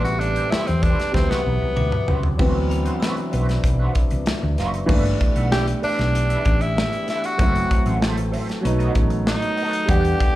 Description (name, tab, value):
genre	lush 1970s-style soul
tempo	96 BPM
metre	4/4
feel	straight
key	G major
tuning	A4 = 441 Hz
part	raspy tenor saxophone	melody	0.0-10.4 s	B3 to G4	-24 LUFS	equal	slapback echo
part	warm baby grand piano	accompaniment	0.0-10.4 s	C3 to F#5	-26 LUFS	equal	slapback echo
part	mellow French horn section	sustained chords	0.0-10.4 s	C3 to E5	-32 LUFS	left 1 dB	none
part	electric guitar at the edge of break-up	riff	0.0-10.2 s	C4 to F#5	-33 LUFS	right 4 dB	wah, tremolo, slapback echo
part	hollow-body short-scale fingered electric bass	bass	0.0-10.1 s	F#1 to E2	-22 LUFS	equal	none
part	modern studio drum kit	drums	0.1-10.3 s	crash cymbal, hi-hat, kick drum, snare drum, toms	-22 LUFS	equal	none
part	glockenspiel with brass mallets	texture	1.8-4.6 s	B5 to E6	-40 LUFS	left 5 dB	none
room	small room ambience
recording	live gig heard through the venue's PA, club reverb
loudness	-18 LUFS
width	side -15 dB against mid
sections	0.0-2.4 A section; 2.4-4.9 B section; 4.9-10.4 C section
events	tenor saxophone solo 0.0-2.4; drum fill 1.1-2.4; grand piano solo 2.4-4.9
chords	0.0 Am9; 1.1 D13; 4.9 G69; 7.4 F#m7b5; 8.6 B7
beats	0.52 1.14 1.77 | 2.39 3.02 3.64 4.26 | 4.89 5.51 6.14 6.76 | 7.39 8.01 8.63 9.26 | 9.88